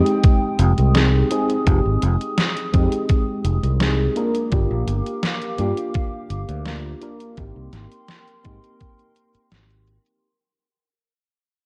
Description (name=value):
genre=vaporwave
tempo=84 BPM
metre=4/4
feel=straight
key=unclear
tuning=A4 = 440 Hz
part: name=mellow FM electric piano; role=accompaniment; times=0.0-10.3 s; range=Ab3 to Bb4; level=-26 LUFS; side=equal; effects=tremolo, analog chorus, tape echo
part: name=warbly tape-like pad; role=sustained chords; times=0.0-10.2 s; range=Ab3 to Eb6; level=-33 LUFS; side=equal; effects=chorus, built-in reverb
part: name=detuned 8-bit digital drum machine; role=drums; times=0.1-10.2 s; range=hi-hat, snare drum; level=-27 LUFS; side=equal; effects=overdrive, studio reverb, gated reverb
part: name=electronic kick drum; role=drums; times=0.2-9.0 s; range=none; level=-20 LUFS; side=equal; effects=overdrive, studio reverb
part: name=fingered electric bass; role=bass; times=0.6-10.0 s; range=F1 to Ab2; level=-22 LUFS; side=equal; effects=none
room=light reverb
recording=cassette tape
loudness=-20 LUFS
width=mono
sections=0.0-10.2 A section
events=fade-out 0.0-10.2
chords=0.0 Fm9; 4.2 Gm7; 7.4 Abmaj9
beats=0.23 0.95 | 1.66 2.38 3.09 3.81 | 4.52 5.24 5.95 6.66 | 7.38 8.09 8.81 9.52